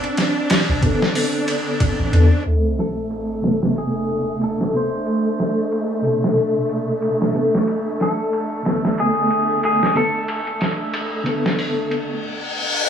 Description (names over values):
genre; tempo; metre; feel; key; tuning
trip hop; 92 BPM; 4/4; swing 57% on 16ths; unclear; A4 = 440 Hz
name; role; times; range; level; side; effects
clean electric guitar; melody; 0.0-12.2 s; G#4 to C5; -25 LUFS; equal; dub echo
bright studio string section; sustained chords; 0.0-12.2 s; A3 to D4; -23 LUFS; equal; low-pass filter
boom bap sampler-style drum kit; drums; 0.0-12.1 s; hi-hat, kick drum, ride cymbal, snare drum; -23 LUFS; equal; overdrive, low-pass filter on kick, studio reverb, low-pass filter on cymbals, low-pass filter on snare, low-pass filter on hats
bowed-like drone; texture; 0.0-12.2 s; C4 to D4; -31 LUFS; right 1 dB; built-in reverb
soft 808-style bass; bass; 0.7-2.3 s; F1 to E2; -15 LUFS; left 1 dB; transformer saturation
mellow reed electric piano; accompaniment; 0.8-12.3 s; B2 to A4; -24 LUFS; equal; fast tremolo, tape echo
sub drop and reverse cymbal; sound effects; 2.5-5.1, 11.9-12.9 s; none; -23 LUFS; left 1 dB; none
room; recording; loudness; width
light reverb, digital ambience; dry, gritty hardware recording, vinyl crackle, low-pass filter, faint mains hum; -17 LUFS; side -8 dB against mid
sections
0.0-2.5 A section; 2.5-12.9 B section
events
filter sweep on reed electric piano 0.0-2.5; impact 2.5-5.1; filter sweep on string section 2.5-12.9; filter sweep 2.5-12.9; reverse cymbal 11.9-12.9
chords
0.0 Bm7; 2.5 Amadd9; 7.7 Bm7/D